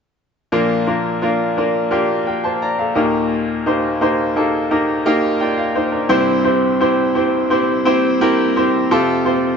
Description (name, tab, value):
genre	pop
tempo	86 BPM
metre	4/4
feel	straight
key	Bb major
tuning	A4 = 436 Hz
part	bright upright piano	solo	0.5-9.6 s	C2 to Bb5	-15 LUFS	equal	none
room	wet echo chamber reverb, RT60 1.3 s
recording	nothing above 7.8 kHz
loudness	-15 LUFS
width	side -6 dB against mid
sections	0.5-9.6 A section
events	upright piano fill 5.1-6.1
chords	0.5 Bb; 3.0 Eb; 6.1 C; 8.9 Fadd9